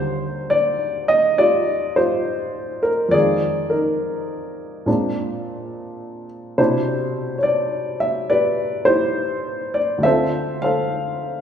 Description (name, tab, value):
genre	solo jazz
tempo	69 BPM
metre	4/4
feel	swing 66% on 8ths, rubato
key	unclear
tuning	A4 = 439 Hz
part	dark upright piano	solo	0.0-11.4 s	D2 to F5	-18 LUFS	equal	none
room	wet concert hall reverb, RT60 2.1 s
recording	recorded in a church or concert hall, nothing above 10.5 kHz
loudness	-18 LUFS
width	side -8 dB against mid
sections	0.0-11.4 A section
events	none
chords	0.0 Ebmaj9; 3.1 Fm7; 4.9 Bb9; 6.6 Cmaj9; 10.0 Dm7